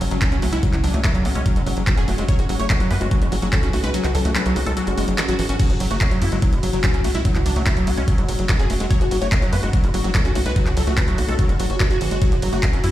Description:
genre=psychedelic trance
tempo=145 BPM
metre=4/4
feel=straight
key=unclear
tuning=A4 = 440 Hz
part: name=supersaw stab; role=melody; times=0.0-12.9 s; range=F#3 to C#5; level=-28 LUFS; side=equal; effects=phaser, sidechain pumping, tape echo
part: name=evolving wavetable pad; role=sustained chords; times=0.0-12.9 s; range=C#4 to F#4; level=-30 LUFS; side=equal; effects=phaser, built-in reverb, sidechain pumping
part: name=overdriven acid bass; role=riff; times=0.0-12.9 s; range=E3 to F#4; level=-26 LUFS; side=left 1 dB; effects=distortion, auto-pan, sidechain pumping, digital delay
part: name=tight sequencer bass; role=bass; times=0.0-12.9 s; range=E1 to F#2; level=-22 LUFS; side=equal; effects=none
part: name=drum and bass drum kit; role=drums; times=0.0-12.9 s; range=crash cymbal, handclaps, hi-hat, ride cymbal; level=-27 LUFS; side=equal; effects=overdrive, small room ambience
part: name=airy breathy pad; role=texture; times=0.0-12.9 s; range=C#4 to F#5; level=-32 LUFS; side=left 1 dB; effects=chorus, sidechain pumping
part: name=electronic kick drum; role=drums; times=0.2-12.7 s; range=none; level=-19 LUFS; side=equal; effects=overdrive, small room ambience
room=little or no reverb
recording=played on a big sound system in a bare room, large studio reverb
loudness=-17 LUFS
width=side -14 dB against mid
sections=0.0-12.9 A section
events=kick drops out 3.9-5.6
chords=0.0 F#5

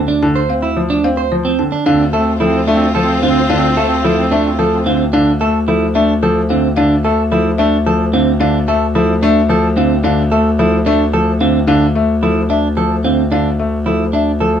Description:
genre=classical, minimalist pattern music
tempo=110 BPM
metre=3/4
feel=straight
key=D minor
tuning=A4 = 440 Hz
part: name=folk marimba with medium mallets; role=melody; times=0.0-14.6 s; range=A4 to A5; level=-20 LUFS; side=left 4 dB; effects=none
part: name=clear baby grand piano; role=accompaniment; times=0.0-14.6 s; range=D3 to C4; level=-17 LUFS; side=left 2 dB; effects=none
part: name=warm bass clarinet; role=bass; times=0.0-14.6 s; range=D2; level=-17 LUFS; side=left 2 dB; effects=none
part: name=electric guitar at the edge of break-up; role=arpeggios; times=0.1-14.6 s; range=C4 to C5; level=-17 LUFS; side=right 5 dB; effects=none
part: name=warm clarinet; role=second line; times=1.9-4.9 s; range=C4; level=-20 LUFS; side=right 2 dB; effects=none
part: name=dark studio string section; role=sustained chords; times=1.9-5.0 s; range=F4 to C5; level=-23 LUFS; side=left 4 dB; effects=none
room=light reverb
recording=close, detailed microphones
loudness=-11 LUFS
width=side -9 dB against mid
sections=0.0-1.9 A section; 1.9-14.6 B section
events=none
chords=0.0 Dm7

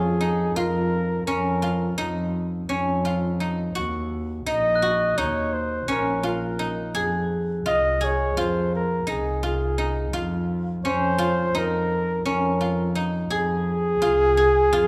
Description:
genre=contemporary instrumental, chamber music in an uneven meter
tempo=169 BPM (eighths)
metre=9/8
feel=straight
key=unclear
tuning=A4 = 440 Hz
part: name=mellow flugelhorn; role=melody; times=0.0-14.9 s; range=Ab4 to Eb5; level=-26 LUFS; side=equal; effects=none
part: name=guzheng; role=arpeggios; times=0.0-14.9 s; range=Db4 to Ab4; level=-29 LUFS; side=equal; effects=none
part: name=warm double bass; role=bass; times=0.0-14.9 s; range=Bb1 to F2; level=-29 LUFS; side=equal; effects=none
part: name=glockenspiel with soft plastic mallets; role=texture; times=4.8-7.1 s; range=Gb6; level=-37 LUFS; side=equal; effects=none
room=wet recital hall reverb, RT60 1.6 s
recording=none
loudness=-24 LUFS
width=mono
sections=0.0-14.9 A section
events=none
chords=0.0 Bbm/F; 3.8 Ebm7; 6.9 Fm7; 10.1 Bbm/F; 13.3 Fm7

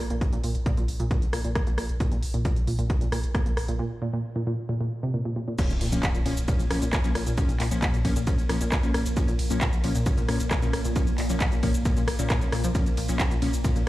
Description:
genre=driving peak-time techno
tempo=134 BPM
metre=4/4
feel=straight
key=Bb minor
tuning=A4 = 440 Hz
part: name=analog pluck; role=riff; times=0.0-13.8 s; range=Bb2 to F3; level=-30 LUFS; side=equal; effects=chorus, sidechain pumping, digital delay
part: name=saturated sub bass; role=bass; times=0.0-13.9 s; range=Bb1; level=-29 LUFS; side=equal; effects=overdrive, sidechain pumping, low-pass filter
part: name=techno drum kit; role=drums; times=0.1-13.8 s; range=crash cymbal, handclaps, hi-hat, ride cymbal, rim click, shaker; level=-32 LUFS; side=equal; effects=sidechain pumping on hats, sidechain pumping on cymbals, sidechain pumping on perc
part: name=electronic kick drum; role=drums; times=0.2-13.7 s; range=none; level=-26 LUFS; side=equal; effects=none
part: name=wavetable chord stab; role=stabs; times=5.6-13.8 s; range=F3 to Db4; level=-32 LUFS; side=left 2 dB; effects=sidechain pumping, digital delay
part: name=deep dark ambient pad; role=drone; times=6.4-13.9 s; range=Bb2 to Bb3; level=-36 LUFS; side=right 1 dB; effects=chorus, built-in reverb, sidechain pumping
part: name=impact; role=sound effects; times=5.6-7.4 s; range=none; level=-36 LUFS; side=equal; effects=none
room=little or no reverb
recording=played on a big sound system in a bare room, stone room reverb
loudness=-23 LUFS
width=side -16 dB against mid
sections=0.0-5.6 A section; 5.6-13.9 B section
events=break 3.8-5.6; drop 5.6-13.9; impact 5.6-7.4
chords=0.0 Bb5; 5.6 Bbm

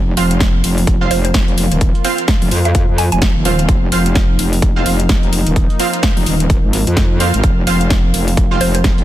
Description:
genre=bass house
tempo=128 BPM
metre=4/4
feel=swing 59% on 16ths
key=unclear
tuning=A4 = 439 Hz
part: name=sweeping resonant pad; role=sustained chords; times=0.0-9.0 s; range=F3 to F4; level=-24 LUFS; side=left 1 dB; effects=chorus, sidechain pumping
part: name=metallic wobble bass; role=bass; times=0.0-9.0 s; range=Eb1 to F2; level=-15 LUFS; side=equal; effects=chorus, overdrive, sidechain pumping
part: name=orchestra-hit-like synth stab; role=stabs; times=0.2-8.6 s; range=C4 to F5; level=-21 LUFS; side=right 4 dB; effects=built-in reverb, cassette tape, sidechain pumping, ping-pong delay
part: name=big-room dance drum kit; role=drums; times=0.2-9.0 s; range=hi-hat, snare drum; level=-21 LUFS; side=left 1 dB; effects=none
part: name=breakbeat sampler-style drum kit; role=drums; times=0.2-9.0 s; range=hi-hat, snare drum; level=-30 LUFS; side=right 4 dB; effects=none
part: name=electronic kick drum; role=drums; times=0.4-9.0 s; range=none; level=-14 LUFS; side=equal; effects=none
part: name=mallet-like synth pluck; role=melody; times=1.1-3.2, 8.6-8.8 s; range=C5 to Ab5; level=-22 LUFS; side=right 2 dB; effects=chorus, phaser, ping-pong delay
room=little or no reverb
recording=dense, heavily limited modern master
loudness=-12 LUFS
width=side -14 dB against mid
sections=0.0-9.0 A section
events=none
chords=0.0 F5

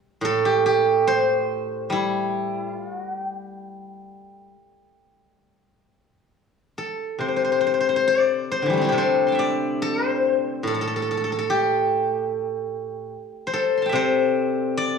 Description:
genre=chinese traditional, Chinese solo plucked strings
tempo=64-74 BPM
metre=4/4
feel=rubato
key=G zhi mode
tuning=A4 = 442 Hz
part: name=steel-string zither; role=solo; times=0.2-15.0 s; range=A2 to C6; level=-20 LUFS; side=left 1 dB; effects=none
room=moderate recital hall reverb, RT60 1.4 s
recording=worn, warbling old tape, cassette tape, warbly pitch drift, studio reverb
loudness=-20 LUFS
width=side -6 dB against mid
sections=0.0-7.2 A section; 7.2-15.0 B section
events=none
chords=none

